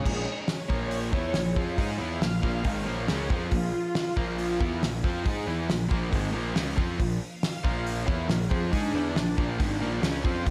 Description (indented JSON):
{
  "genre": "classic rock",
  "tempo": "138 BPM",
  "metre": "4/4",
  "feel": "straight",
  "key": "unclear",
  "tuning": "A4 = 439 Hz",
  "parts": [
    { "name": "string machine, full ensemble", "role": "sustained chords", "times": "0.0-4.6, 7.2-10.5 s", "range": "D4 to F5", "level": "-36 LUFS", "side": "equal", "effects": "ensemble chorus" },
    { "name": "cranked stack guitar", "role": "riff", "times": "0.0-10.5 s", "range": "Ab2 to Ab4", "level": "-35 LUFS", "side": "equal", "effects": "overdrive, slapback echo" },
    { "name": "sludgy distorted guitar", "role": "riff", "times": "0.0-10.5 s", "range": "Ab2 to Ab4", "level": "-36 LUFS", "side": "equal", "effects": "overdrive" },
    { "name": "fuzz picked electric bass", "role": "bass", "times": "0.1-10.5 s", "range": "Ab1 to Ab2", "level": "-36 LUFS", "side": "equal", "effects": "overdrive" },
    { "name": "cloth-damped thuddy drum kit", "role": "drums", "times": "0.1-10.5 s", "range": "crash cymbal, hi-hat, kick drum, snare drum", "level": "-32 LUFS", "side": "equal", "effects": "none" }
  ],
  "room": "wet recital hall reverb, RT60 1.4 s",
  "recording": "big arena sound",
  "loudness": "-28 LUFS",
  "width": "mono",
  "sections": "0.1-10.5 A section",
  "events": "string machine solo 0.1-10.5",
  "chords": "0.1 Bb"
}